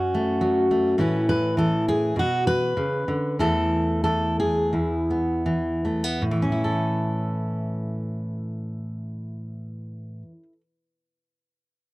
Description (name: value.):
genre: folk, solo fingerstyle acoustic guitar.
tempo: 76-105 BPM.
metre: 4/4.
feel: straight.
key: A major.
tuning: A4 = 439 Hz.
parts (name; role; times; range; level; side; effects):
fingerpicked steel-string acoustic guitar; solo; 0.0-10.6 s; E2 to B4; -22 LUFS; equal; none.
room: little or no reverb.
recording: dry, close 1970s-style studio recording.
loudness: -22 LUFS.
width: side -20 dB against mid.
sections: 0.0-6.2 A section; 6.2-9.3 B section.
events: slowing down 1.0-6.2.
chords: 0.0 F#m; 1.0 Aadd9; 2.2 Bmadd9; 3.4 Esus4; 4.7 E; 6.2 A.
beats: 0.42 | 1.00 1.58 2.17 2.77 | 3.40 4.04 4.73 5.46 | 6.22 7.00 7.76 8.52.